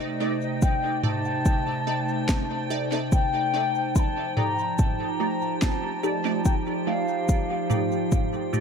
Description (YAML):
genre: ambient dub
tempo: 72 BPM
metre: 4/4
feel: straight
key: C dorian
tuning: A4 = 440 Hz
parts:
  - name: mellow wooden flute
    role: melody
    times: 0.0-7.7 s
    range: Eb5 to C6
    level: -28 LUFS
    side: left 2 dB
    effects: dub echo
  - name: warbly tape-like pad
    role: sustained chords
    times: 0.0-8.6 s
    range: C3 to C5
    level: -29 LUFS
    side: equal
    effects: chorus, built-in reverb
  - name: drifting glass-harmonics texture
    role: texture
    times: 0.0-8.6 s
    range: G5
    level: -39 LUFS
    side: right 10 dB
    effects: chorus, built-in reverb
  - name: filtered dub chord stab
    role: stabs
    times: 0.2-8.6 s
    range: A3 to D5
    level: -32 LUFS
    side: right 3 dB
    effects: phaser, analog chorus, dub echo
  - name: electronic kick drum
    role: drums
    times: 0.6-8.3 s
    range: none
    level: -23 LUFS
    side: equal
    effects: overdrive
  - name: organic electronic drum kit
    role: drums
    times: 0.6-8.6 s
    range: cabasa, snare drum, toms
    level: -32 LUFS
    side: equal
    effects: overdrive, dub echo
room: light reverb, digital ambience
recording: echo-heavy mix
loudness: -22 LUFS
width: side -6 dB against mid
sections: 0.0-8.6 A section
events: none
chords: 0.0 Cm69; 4.0 F13